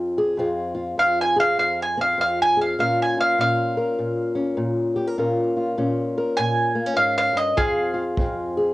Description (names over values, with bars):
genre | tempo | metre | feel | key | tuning
acoustic country blues, solo or duo | 101 BPM | 4/4 | swing 64% on 8ths | unclear | A4 = 440 Hz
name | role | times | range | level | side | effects
bowl-back mandolin | melody | 0.0-8.7 s | Ab4 to Ab5 | -20 LUFS | right 1 dB | cassette tape
fingerpicked old ladder-braced acoustic guitar | accompaniment | 0.0-8.7 s | F2 to Bb4 | -23 LUFS | left 1 dB | cassette tape
kick drum | drums | 7.6-8.3 s | none | -25 LUFS | equal | cassette tape
room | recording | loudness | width
light reverb | home recording on cassette | -19 LUFS | side -18 dB against mid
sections
0.0-8.7 A section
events
mandolin solo 0.0-8.7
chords
0.0 Fm; 2.8 Bbm; 7.6 Fm